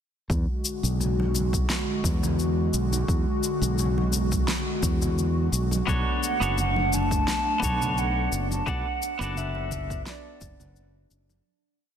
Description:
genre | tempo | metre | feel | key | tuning
sunset chillout | 86 BPM | 4/4 | swing 54% on 16ths | B dorian | A4 = 440 Hz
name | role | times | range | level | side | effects
airy breathy pad | sustained chords | 0.3-11.4 s | D3 to F#4 | -30 LUFS | equal | chorus
modern bright fingered electric bass | bass | 0.3-11.4 s | F#1 to E2 | -26 LUFS | equal | none
electronic kick drum | drums | 0.3-10.6 s | none | -29 LUFS | equal | none
electronic shaker and snare drum | drums | 0.3-11.4 s | none | -32 LUFS | left 3 dB | none
congas | percussion | 1.0-11.4 s | none | -36 LUFS | right 3 dB | none
clean electric guitar | accompaniment | 5.9-11.4 s | B3 to D5 | -31 LUFS | equal | auto-pan, tape echo
mellow hollow silver concert flute | melody | 6.3-11.1 s | D5 to A5 | -29 LUFS | right 2 dB | none
room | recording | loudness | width
light reverb, digital ambience | dense, heavily limited modern master | -23 LUFS | side -8 dB against mid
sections
0.3-11.5 groove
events
fade-out 7.7-11.5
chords
0.3 E9; 5.9 Bm9

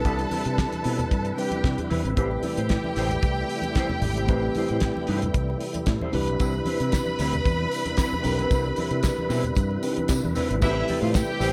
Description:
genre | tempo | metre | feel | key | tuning
disco | 114 BPM | 4/4 | straight | unclear | A4 = 439 Hz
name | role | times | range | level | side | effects
rich studio violin section | second line | 0.0-11.5 s | E4 to B5 | -33 LUFS | equal | none
mellow electric guitar | accompaniment | 0.0-11.5 s | C4 to D5 | -35 LUFS | equal | analog chorus
mellow tine electric piano | accompaniment | 0.0-11.5 s | G3 to B4 | -32 LUFS | equal | none
percussive tonewheel organ | sustained chords | 0.0-11.5 s | C3 to B4 | -34 LUFS | equal | chorus vibrato, fast rotary speaker
fingered electric bass | bass | 0.0-11.5 s | Ab1 to C3 | -30 LUFS | equal | none
damped 70s drum kit | drums | 0.1-11.5 s | crash cymbal, hi-hat, kick drum, snare drum | -30 LUFS | equal | gated reverb
congas | percussion | 0.1-11.3 s | none | -37 LUFS | equal | none
tambourine | percussion | 6.4-11.5 s | none | -44 LUFS | equal | none
room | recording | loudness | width
light reverb, small room ambience | none | -25 LUFS | mono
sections
0.0-2.2 A section; 2.2-10.6 B section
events
none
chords
0.0 Am7; 6.1 Cmaj7; 10.6 Am7

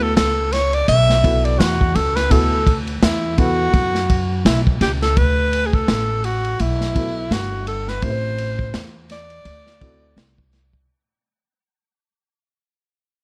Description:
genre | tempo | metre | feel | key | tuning
hip hop, jazz-hop | 84 BPM | 4/4 | swing 59% on 16ths | D major | A4 = 441 Hz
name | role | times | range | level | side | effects
breathy alto saxophone | melody | 0.0-10.5 s | E4 to E5 | -23 LUFS | equal | none
dark upright piano | accompaniment | 0.0-10.3 s | B3 to C5 | -28 LUFS | equal | none
upright bass | bass | 0.0-10.8 s | G1 to F#2 | -23 LUFS | equal | none
crunchy breakbeat drum kit | drums | 0.2-10.9 s | hi-hat, kick drum, ride cymbal, snare drum | -23 LUFS | equal | none
room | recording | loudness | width
little or no reverb | none | -18 LUFS | mono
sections
0.0-5.2 A section; 5.2-10.9 B section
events
fade-out 5.2-10.9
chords
0.0 D69; 8.0 Am7; 9.5 D9

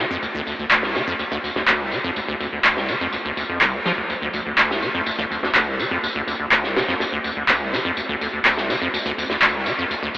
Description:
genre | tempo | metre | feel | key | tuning
acid house | 124 BPM | 4/4 | straight | unclear | A4 = 441 Hz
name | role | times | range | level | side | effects
acid bass, square | riff | 0.0-10.2 s | C2 to F3 | -23 LUFS | equal | tube saturation, lush chorus, diffuse ambient delay
warm soul drum kit | drums | 0.2-10.2 s | hi-hat, snare drum, tambourine | -27 LUFS | equal | high-pass filter on hats, low-pass filter on hats, high-pass filter on snare, low-pass filter on snare, high-pass filter on perc, low-pass filter on perc, high-pass filter on room, low-pass filter on room
electronic handclaps | drums | 0.7-9.5 s | none | -20 LUFS | equal | none
room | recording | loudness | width
wet huge ambient reverb, RT60 4.1 s | dreamy mix soaked in reverb, AM radio sound | -18 LUFS | side -18 dB against mid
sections
0.0-10.2 A section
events
none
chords
none

